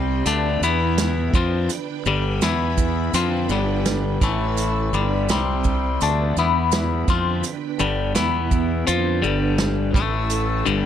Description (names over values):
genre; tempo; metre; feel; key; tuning
psychedelic rock; 84 BPM; 4/4; straight; G mixolydian; A4 = 440 Hz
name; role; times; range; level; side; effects
string machine, cellos; sustained chords; 0.0-10.9 s; B3 to E6; -29 LUFS; right 12 dB; ensemble chorus
twangy electric guitar; riff; 0.0-10.9 s; G2 to F4; -22 LUFS; left 6 dB; phaser
fuzz fingered electric bass; bass; 0.0-10.9 s; G1 to F2; -24 LUFS; right 2 dB; overdrive
vintage drum kit; drums; 0.3-10.5 s; hi-hat, kick drum, snare drum; -24 LUFS; right 2 dB; none
maracas; percussion; 0.3-10.8 s; none; -33 LUFS; right 19 dB; none
room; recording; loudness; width
light reverb, small room reverb; none; -18 LUFS; side -10 dB against mid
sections
0.0-10.9 A section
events
none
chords
0.3 G; 0.6 E5; 1.3 G; 2.4 E5; 3.1 G; 4.2 A5; 4.9 G; 5.3 C5; 6.0 G; 6.4 E5; 7.1 G; 8.2 E5; 8.9 G; 9.9 A5